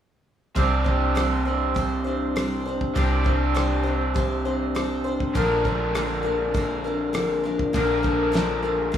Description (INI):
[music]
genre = folk rock and heartland rock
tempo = 100 BPM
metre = 4/4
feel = straight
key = unclear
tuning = A4 = 440 Hz
[part]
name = picked twelve-string acoustic guitar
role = accompaniment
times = 0.6-9.0 s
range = Bb2 to C5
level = -26 LUFS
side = left 4 dB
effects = none
[part]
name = raw garage guitar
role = riff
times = 0.6-9.0 s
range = Bb2 to Bb4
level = -26 LUFS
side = right 2 dB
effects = overdrive
[part]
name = hollow-body short-scale fingered electric bass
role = bass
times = 0.6-9.0 s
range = Bb1 to C2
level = -27 LUFS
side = equal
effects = none
[part]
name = damped 70s drum kit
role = drums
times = 0.6-9.0 s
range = hi-hat, kick drum, rim click, snare drum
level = -28 LUFS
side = equal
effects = none
[sound]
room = light reverb, studio reverb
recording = rough home demo mix, small room ambience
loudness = -21 LUFS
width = side -9 dB against mid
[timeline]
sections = 0.6-9.0 A section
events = none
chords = 0.6 Csus2; 5.4 Bb